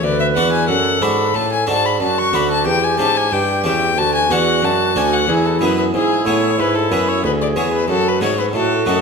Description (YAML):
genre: classical, baroque-style sonata movement with continuo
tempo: 92 BPM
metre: 4/4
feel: straight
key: unclear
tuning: A4 = 442 Hz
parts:
  - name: warm violin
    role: melody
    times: 0.0-9.0 s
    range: G#4 to C#6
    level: -18 LUFS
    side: left 6 dB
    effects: none
  - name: bright baroque flute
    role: second line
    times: 0.0-9.0 s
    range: E4 to B4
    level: -21 LUFS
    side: right 6 dB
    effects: none
  - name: harpsichord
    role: accompaniment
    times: 0.0-9.0 s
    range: D2 to A4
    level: -21 LUFS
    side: left 1 dB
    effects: none
  - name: dark bassoon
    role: bass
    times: 0.0-9.0 s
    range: D2 to A2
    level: -21 LUFS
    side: right 2 dB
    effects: none
room: moderate concert hall reverb, RT60 2.0 s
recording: minimal, uncompressed stereo recording, faint mains hum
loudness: -14 LUFS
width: side -5 dB against mid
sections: 0.0-9.0 A section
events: none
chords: 0.0 D; 2.7 C#dim/E; 4.0 D; 5.3 E; 7.9 D#dim/F#